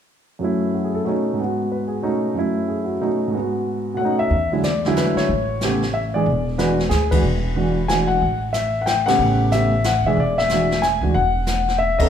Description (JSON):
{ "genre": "jazz piano trio", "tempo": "184 BPM", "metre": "3/4", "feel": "swing 63% on 8ths", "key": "E mixolydian", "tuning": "A4 = 440 Hz", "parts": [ { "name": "warm concert grand piano", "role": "melody", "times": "0.4-12.1 s", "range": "F#2 to G#5", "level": "-19 LUFS", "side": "equal", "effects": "none" }, { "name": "upright bass", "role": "bass", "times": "4.3-12.1 s", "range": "E1 to E2", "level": "-23 LUFS", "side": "equal", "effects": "none" }, { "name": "jazz brush drum kit", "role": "drums", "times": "4.3-12.1 s", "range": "brushed snare drum, hi-hat, kick drum, ride cymbal, snare drum", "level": "-26 LUFS", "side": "left 1 dB", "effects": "none" } ], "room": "wet recital hall reverb, RT60 1.5 s", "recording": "recorded in a church or concert hall", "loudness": "-18 LUFS", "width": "side -8 dB against mid", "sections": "0.4-4.3 A section; 4.3-12.1 B section", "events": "band accent 7.1, 9.0", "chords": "0.4 F#m7; 1.1 B9; 1.4 G#m7; 2.0 B9; 2.4 F#m7; 3.0 B9; 3.3 G#m7; 4.0 B9; 4.3 E9; 5.3 A; 6.3 E9; 8.2 A9; 10.2 E9", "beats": "| 0.41 0.73 1.06 | 1.39 1.71 2.04 | 2.36 2.69 3.01 | 3.34 3.66 3.99 | 4.31 4.64 4.96 | 5.29 5.62 5.94 | 6.26 6.59 6.92 | 7.24 7.57 7.89 | 8.22 8.54 8.87 | 9.19 9.52 9.84 | 10.17 10.49 10.82 | 11.14 11.47 11.79" }